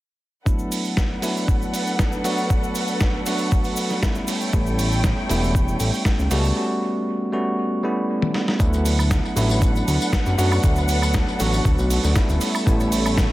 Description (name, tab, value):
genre	nu-disco, nu disco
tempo	118 BPM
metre	4/4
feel	straight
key	D major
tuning	A4 = 441 Hz
part	barky tine electric piano	accompaniment	0.5-13.3 s	F#3 to F#4	-24 LUFS	equal	sidechain pumping, dub echo
part	muted symphonic violin section	sustained chords	0.5-13.3 s	A3 to A5	-28 LUFS	equal	sidechain pumping
part	electronic kick drum	drums	0.5-13.3 s	none	-21 LUFS	equal	none
part	cabasa	percussion	0.5-13.3 s	none	-35 LUFS	left 1 dB	dub echo
part	dusty soul sampler-style drum kit	drums	0.7-13.3 s	hi-hat, snare drum, tambourine, toms, woodblock	-27 LUFS	right 1 dB	dub echo
part	fat analog bass	bass	4.5-13.3 s	D1 to F#2	-21 LUFS	equal	tube saturation
room	light reverb, digital ambience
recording	echo-heavy mix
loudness	-18 LUFS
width	side -16 dB against mid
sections	0.5-8.6 A section; 8.6-13.3 B section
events	break 6.6-8.6; drum fill 8.2-8.6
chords	0.5 D6; 4.3 A7; 8.6 D6; 12.4 A7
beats	| 0.47 0.97 1.48 1.99 | 2.50 3.01 3.52 4.03 | 4.53 5.04 5.55 6.06 | 6.57 7.08 7.58 8.09 | 8.60 9.11 9.62 10.13 | 10.64 11.14 11.65 12.16 | 12.67 13.18